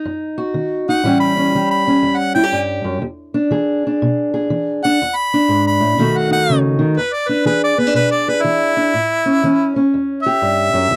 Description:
acoustic country blues, solo or duo; 122 BPM; 4/4; swing 65% on 8ths; A4 = 440 Hz
fingerpicked steel-string acoustic guitar; accompaniment; 0.0-11.0 s; E2 to G#4; -18 LUFS; equal
clear harmonica; melody; 0.9-11.0 s; E4 to B5; -19 LUFS; equal
light reverb; dry, close 1970s-style studio recording; -17 LUFS; mono
0.0-7.0 A section; 7.0-11.0 B section
harmonica solo 7.0-11.0
0.0 B (rootless); 1.0 A7; 3.0 E7; 6.0 B7; 7.0 E7; 8.9 A7

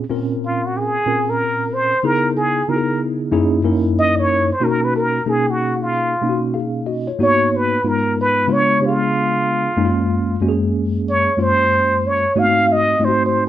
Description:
hip hop; 93 BPM; 4/4; swing 64% on 16ths; A4 = 440 Hz
tine electric piano; accompaniment; 0.0-13.5 s; Gb2 to F5; -18 LUFS; equal; medium stereo tremolo
trumpet with plunger mute; melody; 0.5-13.5 s; F4 to F5; -17 LUFS; equal
moderate studio reverb, RT60 0.6 s; dark, warm production; -15 LUFS; side -12 dB against mid
0.0-13.5 A section
muted trumpet solo 0.0-13.5
0.0 Bbm9; 2.0 Dbm7; 3.3 Gb13; 4.6 Bmaj9; 7.2 Abm7; 8.5 Db7b9; 9.8 Gbmaj9; 12.4 Ab7b9

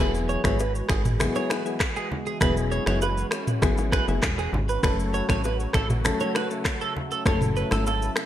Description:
afrobeats; 99 BPM; 4/4; straight; E major; A4 = 440 Hz
soft electric-piano-like synth keys; accompaniment; 0.0-7.9 s; F#3 to A4; -30 LUFS; left 4 dB; chorus, tremolo
warm analog pad; sustained chords; 0.0-8.3 s; C#3 to F#4; -34 LUFS; right 1 dB; chorus
twelve-string electric guitar; riff; 0.0-8.1 s; G#4 to C#5; -30 LUFS; right 5 dB; wide subtle chorus, digital delay
plucky analog bass; bass; 0.0-8.1 s; E1 to A1; -27 LUFS; equal
congas and bongos; percussion; 0.0-8.3 s; -35 LUFS; left 1 dB
afro-pop drum kit; drums; 0.1-8.3 s; finger snaps, handclaps, kick drum, rim click, shaker, toms; -26 LUFS; equal; gated reverb
light reverb; bright 1980s-style digital production; -22 LUFS; side -12 dB against mid
0.0-8.3 A section
0.0 Eadd9; 4.8 F#m

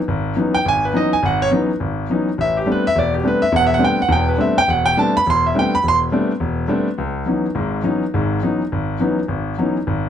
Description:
jazz; 208 BPM; 4/4; swing 60% on 8ths; A4 = 438 Hz
clear grand piano; solo; 0.1-10.1 s; E1 to C6; -16 LUFS; equal
moderate large studio reverb, RT60 0.9 s; dark, warm production; -16 LUFS; side -9 dB against mid
0.0-7.0 A section; 7.0-10.1 B section
0.0 C#m11; 2.4 Am11; 7.0 C#m11

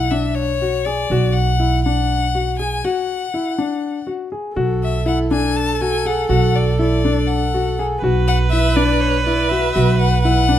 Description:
contemporary instrumental, chamber music in an uneven meter; 243 BPM (eighths); 7/8; straight; B dorian; A4 = 439 Hz
clear violin; melody; 0.0-10.6 s; C#5 to A5; -22 LUFS; left 6 dB
warm grand piano; arpeggios; 0.0-10.6 s; D4 to G#4; -21 LUFS; left 4 dB
upright bass; bass; 0.0-10.6 s; B1; -19 LUFS; right 3 dB
warm viola; second line; 4.6-10.6 s; A4 to B4; -22 LUFS; right 4 dB
light reverb; close, detailed microphones; -16 LUFS; side -11 dB against mid
0.0-4.6 A section; 4.6-10.6 B section
break 2.8-4.6
0.0 Bm7; 8.0 Bmadd11

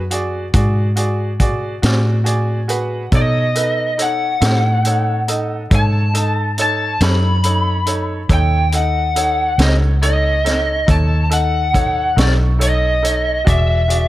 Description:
slow blues; 46 BPM (dotted quarters); 12/8; straight; A4 = 440 Hz
vintage muted fingered electric bass; bass; 0.0-14.1 s; E1 to B2; -17 LUFS; equal
bright upright piano; accompaniment; 0.1-14.1 s; D#4 to C#6; -24 LUFS; right 3 dB
vintage drum kit; drums; 0.1-14.1 s; hi-hat, kick drum, snare drum; -19 LUFS; equal
lead guitar through a small cranked amp; melody; 3.2-14.1 s; D5 to B5; -18 LUFS; left 1 dB; overdrive
small room ambience; -14 LUFS; side -15 dB against mid
0.0-14.1 A section
upright piano fill 1.8-3.1
0.0 E9 (rootless); 3.1 B9; 13.5 E9

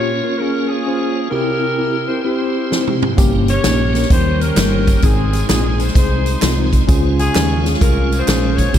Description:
uptempo gospel; 130 BPM; 4/4; swing 66% on 8ths; A4 = 440 Hz
clear saxophone section; melody; 0.0-8.8 s; C4 to Db5; -21 LUFS; left 3 dB; ping-pong delay
mellow tine electric piano; accompaniment; 0.0-8.8 s; G2 to Db5; -21 LUFS; left 2 dB; fast stereo tremolo
tonewheel organ; sustained chords; 0.0-8.8 s; Eb3 to G4; -22 LUFS; right 4 dB; fast rotary speaker, chorus vibrato
swinging big-band drum kit; drums; 2.7-8.8 s; hi-hat, kick drum, snare drum, toms; -16 LUFS; equal
deep dub fingered electric bass; bass; 3.2-8.8 s; G1 to Eb2; -18 LUFS; equal
tambourine and handclaps; percussion; 3.2-8.8 s; -30 LUFS; right 7 dB
light reverb, small room ambience; -13 LUFS; side -10 dB against mid
0.0-8.8 A section
drum fill 2.7-3.2
0.0 Bbm; 1.3 C; 3.2 Gdim; 5.0 Ab; 6.9 Db

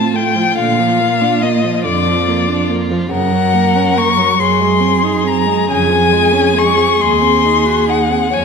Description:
classical, slow romantic movement for string quartet; 47 BPM (dotted quarters); 6/8; rubato; Bb major; A4 = 441 Hz
warm violin; melody; 0.0-8.4 s; D5 to Db6; -15 LUFS; left 8 dB
dark violin; second line; 0.0-8.4 s; F4 to Db5; -18 LUFS; right 1 dB
warm viola; accompaniment; 0.0-8.4 s; Db3 to Gb4; -20 LUFS; right 4 dB
dark cello; bass; 0.0-8.4 s; Eb2 to Bb2; -17 LUFS; right 5 dB
wet scoring stage reverb, RT60 1.9 s; -11 LUFS; side -5 dB against mid
0.0-8.4 A section
0.0 F/A; 0.6 Bb; 3.1 Gb; 4.4 Ab7/Gb; 5.7 Db/F; 7.0 Ab7/Eb

